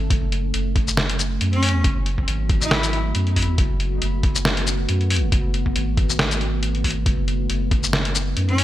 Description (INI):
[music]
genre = deep dubstep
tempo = 138 BPM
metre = 4/4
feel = swing 55% on 16ths, half-time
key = F# dorian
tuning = A4 = 440 Hz
[part]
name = deep dark ambient pad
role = sustained chords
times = 0.0-8.6 s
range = A3 to F#4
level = -29 LUFS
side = right 1 dB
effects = chorus, built-in reverb
[part]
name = soft dub sub bass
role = bass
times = 0.0-8.6 s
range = F#1 to F#2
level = -23 LUFS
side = equal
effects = none
[part]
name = electronic kick drum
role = drums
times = 0.1-7.8 s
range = none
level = -21 LUFS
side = equal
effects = none
[part]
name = trip hop sampler-style drum kit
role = drums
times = 0.1-8.6 s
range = hi-hat, shaker, snare drum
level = -23 LUFS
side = left 1 dB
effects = gated reverb
[part]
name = bright cello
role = melody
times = 1.5-2.9, 8.5-8.6 s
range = C#4 to E4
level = -27 LUFS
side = equal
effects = dub echo
[sound]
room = light reverb, digital ambience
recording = bright 1980s-style digital production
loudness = -18 LUFS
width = side -14 dB against mid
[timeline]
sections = 0.0-8.6 A section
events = none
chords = 0.0 F#m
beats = | 0.10 0.54 0.97 1.41 | 1.84 2.28 2.71 3.15 | 3.58 4.02 4.45 4.89 | 5.32 5.76 6.19 6.63 | 7.06 7.50 7.93 8.37